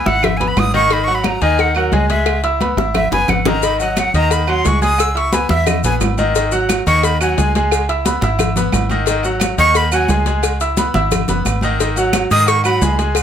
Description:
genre	latin, salsa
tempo	176 BPM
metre	4/4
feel	straight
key	G# minor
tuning	A4 = 440 Hz
part	breathy bright jazz flute	melody	0.0-7.5, 9.6-10.2, 12.3-13.0 s	A#4 to E6	-17 LUFS	right 1 dB	none
part	bright grand piano	accompaniment	0.0-13.2 s	D#3 to E6	-18 LUFS	equal	none
part	deep dub fingered electric bass	bass	0.1-13.2 s	F#1 to G#2	-19 LUFS	equal	none
part	agogo bells and timbales	percussion	0.1-13.2 s	none	-25 LUFS	right 6 dB	none
part	congas	percussion	0.1-13.2 s	none	-22 LUFS	left 2 dB	none
part	claves	percussion	0.2-13.2 s	none	-26 LUFS	right 9 dB	none
part	cowbell and bongos	percussion	0.2-13.2 s	none	-24 LUFS	left 8 dB	none
part	maracas	percussion	3.6-13.2 s	none	-28 LUFS	left 7 dB	none
room	light reverb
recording	none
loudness	-13 LUFS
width	side -9 dB against mid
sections	0.0-13.2 A section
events	flute solo 0.0-13.2; drum fill 2.6-3.6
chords	0.0 C#m9 (rootless); 0.9 G#5; 2.3 C#m9; 3.6 G#5; 5.0 C#m9; 6.4 G#5; 7.7 C#m9; 9.1 G#5; 10.4 C#m9; 11.8 G#m7

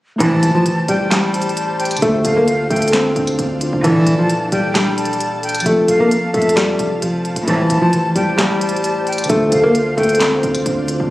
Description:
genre	hip hop, trap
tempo	132 BPM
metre	4/4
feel	half-time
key	A phrygian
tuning	A4 = 439 Hz
part	nylon-string guitar	melody	0.2-11.1 s	E3 to C4	-16 LUFS	equal	ping-pong delay
part	breathy jazz flute	second line	0.2-10.2 s	E5 to A5	-23 LUFS	equal	ping-pong delay
part	mellow tine electric piano	accompaniment	0.2-11.1 s	Bb2 to F5	-23 LUFS	equal	wide subtle chorus
part	ethereal airy pad	sustained chords	0.8-11.1 s	D4 to A5	-27 LUFS	equal	ensemble chorus, built-in reverb
part	warm studio string section	stabs	0.2-0.5, 3.8-4.2, 7.5-7.8 s	Bb1 to E3	-25 LUFS	right 1 dB	none
part	hard-hitting 808-style bass	bass	0.2-11.1 s	F1 to E3	-26 LUFS	equal	none
part	trap drum kit	drums	0.2-11.0 s	handclaps, hi-hat, snare drum	-22 LUFS	equal	none
room	light reverb, small room ambience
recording	recorded on a phone in the room, studio reverb, compression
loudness	-13 LUFS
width	side -16 dB against mid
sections	0.2-11.1 A section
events	none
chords	0.2 Am7; 2.0 Dm7; 3.8 Bbmaj7; 5.7 F; 7.5 Am7; 9.3 Dm7

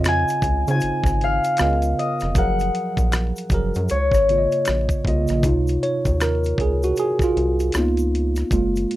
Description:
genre	R&B, neo-soul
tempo	78 BPM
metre	4/4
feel	swing 62% on 16ths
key	Db major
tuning	A4 = 441 Hz
part	concert harp	melody	0.0-5.8 s	Db5 to Ab5	-22 LUFS	left 2 dB	none
part	tine electric piano	accompaniment	0.0-9.0 s	C3 to Eb5	-22 LUFS	right 1 dB	medium stereo tremolo
part	rubbery square bass	bass	0.0-8.9 s	F1 to Db3	-22 LUFS	equal	none
part	finger snaps and tube shaker	percussion	0.0-8.9 s	none	-37 LUFS	left 2 dB	none
part	dusty soul sampler-style drum kit	drums	0.1-9.0 s	hi-hat, kick drum, rim click	-24 LUFS	equal	none
room	little or no reverb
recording	rough home demo mix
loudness	-18 LUFS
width	side -15 dB against mid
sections	0.0-5.4 A section; 5.4-9.0 B section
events	tine electric piano solo 5.4-9.0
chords	0.0 Dbmaj9; 1.6 Db13; 2.4 Gbmaj9; 3.9 Db69; 5.4 Dbmaj9; 7.7 Db13

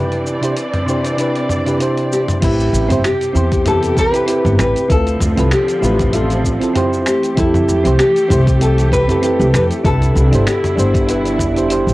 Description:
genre	sunset chillout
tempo	97 BPM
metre	4/4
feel	swing 55% on 16ths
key	A minor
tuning	A4 = 440 Hz
part	soft electric-piano-like synth keys	accompaniment	0.0-11.9 s	C3 to E5	-19 LUFS	equal	chorus, auto-pan
part	rich studio string section	sustained chords	0.0-11.9 s	B2 to D5	-22 LUFS	equal	none
part	wind-like tuned noise texture	texture	0.0-2.4 s	G6	-44 LUFS	right 2 dB	none
part	dusty soul sampler-style drum kit	drums	0.1-11.9 s	crash cymbal, finger snaps, hi-hat, shaker, toms	-22 LUFS	equal	cassette tape
part	nylon-string guitar	melody	2.1-11.7 s	E4 to B4	-18 LUFS	left 1 dB	cassette tape, tape echo
part	upright bass	bass	2.4-11.9 s	G1 to F2	-16 LUFS	equal	none
part	electronic kick drum	drums	2.4-11.5 s	none	-19 LUFS	equal	cassette tape
room	moderate small room reverb, RT60 0.6 s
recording	home recording on cassette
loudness	-12 LUFS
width	side -18 dB against mid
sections	0.0-2.4 A section; 2.4-11.9 B section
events	none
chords	0.0 Cmaj9; 2.4 Am9; 4.9 Dm7; 7.1 Fmaj9; 9.8 Cmaj9

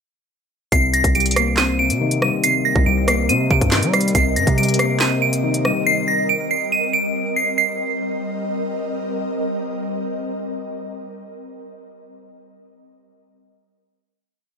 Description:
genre	hip hop, drill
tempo	140 BPM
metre	4/4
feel	half-time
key	C minor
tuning	A4 = 440 Hz
part	delicate synth tine bell	melody	0.7-8.8 s	Bb6 to Eb7	-19 LUFS	right 2 dB	chorus, phaser, digital delay
part	felt-muted upright piano	accompaniment	0.7-6.7 s	C3 to C4	-22 LUFS	left 4 dB	none
part	ethereal airy pad	sustained chords	1.8-11.5 s	G3 to Eb5	-25 LUFS	equal	ensemble chorus, built-in reverb
part	long sustained 808-style bass	bass	0.7-5.7 s	C2 to G3	-21 LUFS	equal	none
part	drill drum kit	drums	0.7-5.7 s	handclaps, hi-hat, kick drum, rim click, snare drum	-20 LUFS	equal	none
room	light reverb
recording	none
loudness	-17 LUFS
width	side -6 dB against mid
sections	0.7-7.6 hook; 7.6-11.0 final chord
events	none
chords	0.7 Cm7

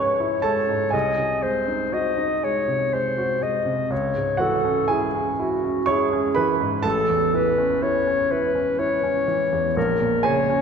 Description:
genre	classical, romantic duo for clarinet and grand piano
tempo	61 BPM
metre	3/4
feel	rubato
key	C# minor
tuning	A4 = 438 Hz
part	warm clarinet	melody	0.0-10.6 s	F#4 to D#5	-22 LUFS	left 2 dB	none
part	clear baby grand piano	accompaniment	0.0-10.6 s	A1 to C#6	-23 LUFS	right 2 dB	none
room	wet concert hall reverb, RT60 2.1 s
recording	minimal, uncompressed stereo recording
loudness	-20 LUFS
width	side -6 dB against mid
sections	0.0-10.6 A section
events	none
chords	0.0 C#m; 0.9 G#7/B#; 3.9 C#m; 6.9 A; 9.8 Gb/Bb (rootless)

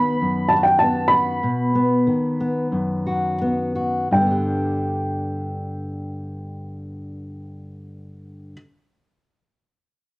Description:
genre	folk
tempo	82-101 BPM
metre	4/4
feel	straight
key	G major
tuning	A4 = 440 Hz
part	dark upright piano	melody	0.0-8.5 s	G5 to B5	-20 LUFS	right 1 dB	none
part	fingerpicked steel-string acoustic guitar	accompaniment	0.0-8.7 s	F#2 to G4	-22 LUFS	left 1 dB	none
room	light reverb, small room ambience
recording	worn, warbling old tape, cassette tape, warbly pitch drift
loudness	-18 LUFS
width	side -22 dB against mid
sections	0.0-4.1 A section; 4.1-7.1 B section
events	slowing down 0.0-4.1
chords	0.0 B; 4.1 G

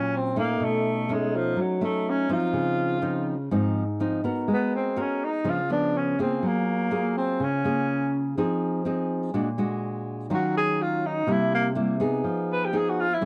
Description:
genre	bossa nova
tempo	124 BPM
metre	4/4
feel	straight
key	unclear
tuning	A4 = 441 Hz
part	breathy tenor saxophone	melody	0.0-13.2 s	F3 to Cb5	-28 LUFS	equal	none
part	nylon-string guitar	accompaniment	0.0-13.2 s	Ab2 to Bb4	-28 LUFS	equal	none
room	little or no reverb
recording	dry, close 1970s-style studio recording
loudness	-26 LUFS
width	mono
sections	0.0-13.2 A section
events	tenor saxophone solo 0.0-13.2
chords	0.0 Ebm9; 0.6 B9; 2.5 Dbmaj9; 4.5 Abm9; 5.5 Db7b9; 6.4 Gbmaj9; 8.4 Fm7; 9.3 Bb7b13; 10.3 Ebm9; 11.3 C7; 12.2 Fm7b5

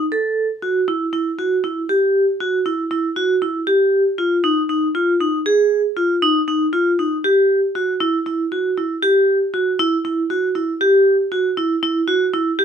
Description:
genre	contemporary instrumental, contemporary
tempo	236 BPM (eighths)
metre	7/8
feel	straight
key	unclear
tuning	A4 = 439 Hz
part	vibraphone with hard mallets	solo	0.0-12.6 s	Eb4 to A4	-16 LUFS	right 1 dB	none
room	moderate small room reverb, RT60 0.6 s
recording	minimal, uncompressed stereo recording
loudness	-16 LUFS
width	side -8 dB against mid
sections	0.0-9.0 A section; 9.0-12.6 B section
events	none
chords	none

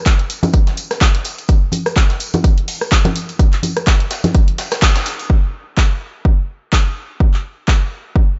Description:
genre	house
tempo	126 BPM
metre	4/4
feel	swing 56% on 16ths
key	none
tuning	none
part	breakbeat sampler-style drum kit	drums	0.1-5.2 s	hi-hat, snare drum, tambourine	-31 LUFS	equal	sidechain pumping on perc, high-pass filter on perc, high-pass filter on snare, sidechain pumping on hats, high-pass filter on hats
part	electronic kick drum	drums	0.1-8.3 s	none	-15 LUFS	equal	none
part	punchy analog drum machine	drums	0.1-7.8 s	handclaps, hi-hat, rim click	-23 LUFS	equal	none
part	tambourine and congas	percussion	0.1-5.3 s	none	-24 LUFS	equal	none
room	little or no reverb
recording	nothing above 7.8 kHz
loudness	-16 LUFS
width	mono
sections	0.0-5.3 A section; 5.3-8.4 B section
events	band accent 4.8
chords	none

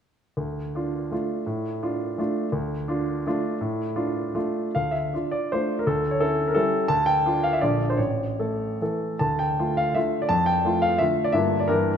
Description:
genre	classical, romantic triple-time dance for piano with dotted rhythms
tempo	139-185 BPM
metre	3/4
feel	rubato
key	D minor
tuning	A4 = 440 Hz
part	warm grand piano	solo	0.4-12.0 s	A1 to A5	-22 LUFS	equal	none
room	wet scoring stage reverb, RT60 1.6 s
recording	none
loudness	-22 LUFS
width	side -8 dB against mid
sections	0.4-4.7 A section; 4.7-12.0 B section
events	none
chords	0.4 Dm; 5.8 A7/D; 6.9 Dm; 7.6 Bb; 8.0 A; 9.2 Dm; 10.3 Dm/F; 11.3 Gm7

